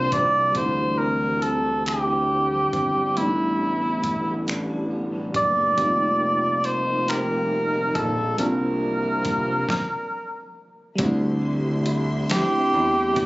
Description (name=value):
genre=slow six-eight R&B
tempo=46 BPM (dotted quarters)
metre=6/8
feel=straight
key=D minor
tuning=A4 = 437 Hz
part: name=mellow cor anglais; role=melody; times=0.0-13.3 s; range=E4 to D5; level=-22 LUFS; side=right 1 dB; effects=slapback echo
part: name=electric guitar at the edge of break-up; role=second line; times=0.0-13.3 s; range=A2 to G4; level=-31 LUFS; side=right 1 dB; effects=ensemble chorus, slapback echo
part: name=FM electric piano with soft pad layer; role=accompaniment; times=0.0-13.3 s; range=E3 to F4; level=-28 LUFS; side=equal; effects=chorus, tremolo
part: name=rich studio string section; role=sustained chords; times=0.0-0.5, 11.0-13.3 s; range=F4 to C6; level=-35 LUFS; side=left 1 dB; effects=none
part: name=fat analog bass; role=bass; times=0.0-13.3 s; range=F1 to E2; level=-28 LUFS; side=equal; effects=none
part: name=dusty soul sampler-style drum kit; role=drums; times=0.1-13.3 s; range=finger snaps, hi-hat, kick drum, snare drum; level=-28 LUFS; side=equal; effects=none
room=light reverb, digital ambience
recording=recorded on a phone in the room, club reverb, nothing above 7.8 kHz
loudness=-20 LUFS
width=side -19 dB against mid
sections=0.6-11.0 A section; 11.0-13.3 B section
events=stop 9.7-11.0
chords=0.0 C9sus4; 0.6 D9sus4; 3.2 A9sus4; 5.8 F9sus4; 8.4 C9sus4; 11.0 D9sus4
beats=| 0.56 1.86 | 3.17 4.47 | 5.78 7.08 | 8.38 9.69 | 10.99 12.30